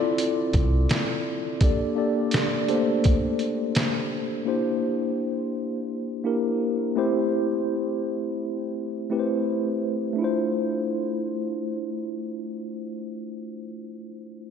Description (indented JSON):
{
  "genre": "hip hop, boom-bap hip-hop",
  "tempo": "84 BPM",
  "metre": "4/4",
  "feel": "swing 58% on 16ths",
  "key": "D minor",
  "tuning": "A4 = 440 Hz",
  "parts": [
    { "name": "mellow tine electric piano", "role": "accompaniment", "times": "0.0-14.5 s", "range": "A3 to D5", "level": "-25 LUFS", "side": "left 1 dB", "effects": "medium stereo tremolo, high-pass filter, low-pass filter" },
    { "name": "trip hop sampler-style drum kit", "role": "drums", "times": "0.2-4.0 s", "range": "hi-hat, kick drum, snare drum", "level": "-25 LUFS", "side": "right 1 dB", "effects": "none" },
    { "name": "deep dub fingered electric bass", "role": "bass", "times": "0.5-0.9 s", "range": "C2", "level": "-22 LUFS", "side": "right 1 dB", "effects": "none" }
  ],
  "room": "wet lush hall reverb, RT60 2.8 s",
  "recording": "dreamy mix soaked in reverb",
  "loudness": "-23 LUFS",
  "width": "side -7 dB against mid",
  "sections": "0.0-10.2 A section; 10.2-13.0 B section",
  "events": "none",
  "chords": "0.0 Dm7; 1.6 Gmadd9; 4.5 C7; 7.0 Am7; 10.2 Dm7"
}